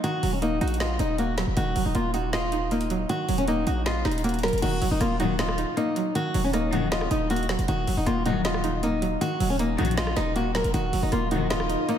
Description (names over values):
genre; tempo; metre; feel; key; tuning
hip hop, trap; 157 BPM; 4/4; half-time; Eb minor; A4 = 440 Hz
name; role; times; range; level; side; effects
flamenco guitar; melody; 0.0-12.0 s; Db4 to Bb4; -27 LUFS; equal; analog delay
string-like resonator pluck; accompaniment; 0.0-12.0 s; Eb3 to Eb5; -29 LUFS; right 1 dB; chorus
trap drum kit; drums; 0.0-12.0 s; crash cymbal, hi-hat, rim click, snare drum; -33 LUFS; equal; none
hard-hitting 808-style bass; bass; 0.2-11.8 s; Db1 to Bb1; -28 LUFS; equal; none
warm studio string section; stabs; 5.2-11.7 s; Bb1 to Eb3; -31 LUFS; left 5 dB; analog delay
ethereal airy pad; sustained chords; 11.0-12.0 s; Eb4 to Eb5; -32 LUFS; equal; ensemble chorus, built-in reverb
room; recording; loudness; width
moderate lush hall reverb, RT60 1.9 s; dreamy mix soaked in reverb; -23 LUFS; side -9 dB against mid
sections
0.0-4.6 A section; 4.6-12.0 B section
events
none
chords
0.0 Ebm